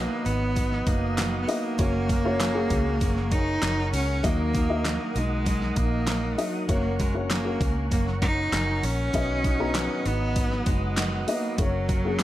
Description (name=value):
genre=piano-driven pop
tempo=98 BPM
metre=4/4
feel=straight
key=F# major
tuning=A4 = 440 Hz
part: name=rich cello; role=melody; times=0.0-12.2 s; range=F#3 to D#4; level=-28 LUFS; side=right 1 dB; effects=none
part: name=dark upright piano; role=accompaniment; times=0.0-12.2 s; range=B2 to A#5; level=-31 LUFS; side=left 3 dB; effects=none
part: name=tonewheel organ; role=sustained chords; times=0.0-12.2 s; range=F#4 to D#6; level=-38 LUFS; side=equal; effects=chorus vibrato, slow rotary speaker
part: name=picked steel-string acoustic guitar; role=riff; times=0.0-12.2 s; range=B2 to B4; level=-34 LUFS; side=right 3 dB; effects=none
part: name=vintage muted fingered electric bass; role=bass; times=0.0-12.2 s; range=F#1 to D#2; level=-28 LUFS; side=equal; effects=none
part: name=pop drum kit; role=drums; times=0.3-12.2 s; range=handclaps, hi-hat, kick drum, snare drum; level=-28 LUFS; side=equal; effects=overdrive
room=light reverb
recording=dark, warm production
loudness=-23 LUFS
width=side -14 dB against mid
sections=0.0-12.2 A section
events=none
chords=0.0 B; 1.8 F#; 4.2 D#m; 6.7 F#; 9.1 B; 11.6 F#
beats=0.56 1.18 | 1.79 2.40 3.01 3.63 | 4.24 4.85 5.46 6.08 | 6.69 7.30 7.91 8.53 | 9.14 9.75 10.36 10.97 | 11.59 12.20